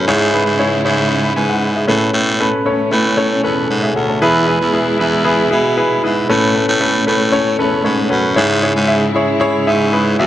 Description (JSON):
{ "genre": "piano-driven pop", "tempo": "116 BPM", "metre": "4/4", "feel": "straight", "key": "A major", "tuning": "A4 = 442 Hz", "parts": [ { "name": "clear baby grand piano", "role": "accompaniment", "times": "0.0-10.3 s", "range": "G#2 to B5", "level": "-15 LUFS", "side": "left 1 dB", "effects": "none" }, { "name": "warm studio string section", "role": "sustained chords", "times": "0.0-10.3 s", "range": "B2 to F#4", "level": "-22 LUFS", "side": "right 1 dB", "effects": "none" }, { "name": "growling baritone saxophone", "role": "bass", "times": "0.0-10.3 s", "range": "D2 to B2", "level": "-17 LUFS", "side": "equal", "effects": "none" } ], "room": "light reverb, small room ambience", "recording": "none", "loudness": "-12 LUFS", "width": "side -12 dB against mid", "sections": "0.0-10.3 A section", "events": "grand piano fill 7.6-8.4", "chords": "0.1 C#m/G#; 1.9 Aadd9; 4.2 E; 6.3 Aadd9; 8.4 C#m/G#", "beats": "| 0.07 0.59 1.10 1.62 | 2.14 2.66 3.18 3.70 | 4.22 4.74 5.25 5.77 | 6.29 6.81 7.33 7.85 | 8.37 8.88 9.40 9.92" }